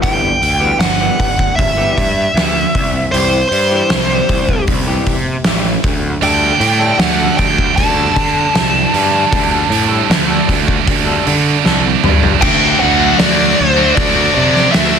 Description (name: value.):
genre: quiet-loud alternative rock.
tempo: 78 BPM.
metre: 4/4.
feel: straight.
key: unclear.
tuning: A4 = 439 Hz.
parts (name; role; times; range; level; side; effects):
bluesy overdriven lead guitar; melody; 0.0-15.0 s; C5 to A5; -15 LUFS; equal; distortion.
electric guitar through a small old amp; arpeggios; 0.0-11.9 s; D3 to A4; -22 LUFS; left 2 dB; none.
fuzz picked electric bass; bass; 0.0-15.0 s; G1 to D3; -18 LUFS; equal; overdrive.
oversized low-tuned drum kit; drums; 0.0-14.9 s; crash cymbal, hi-hat, kick drum, snare drum, toms; -16 LUFS; equal; none.
scooped high-gain guitar; riff; 6.2-15.0 s; D3 to D4; -17 LUFS; right 15 dB; distortion.
string machine, cellos; sustained chords; 12.4-15.0 s; F#3 to A5; -25 LUFS; left 3 dB; none.
heavy high-gain guitar; riff; 12.4-15.0 s; D3 to D4; -19 LUFS; equal; distortion.
high-gain distorted guitar; riff; 12.4-15.0 s; D3 to F#4; -17 LUFS; left 16 dB; distortion.
room: light reverb.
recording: dense, heavily limited modern master.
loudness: -11 LUFS.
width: side -7 dB against mid.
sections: 0.0-12.4 A section; 12.4-15.0 B section.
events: drum fill 11.7-12.4.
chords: 0.0 G6; 2.8 C; 5.9 Dsus4; 12.4 Dadd9.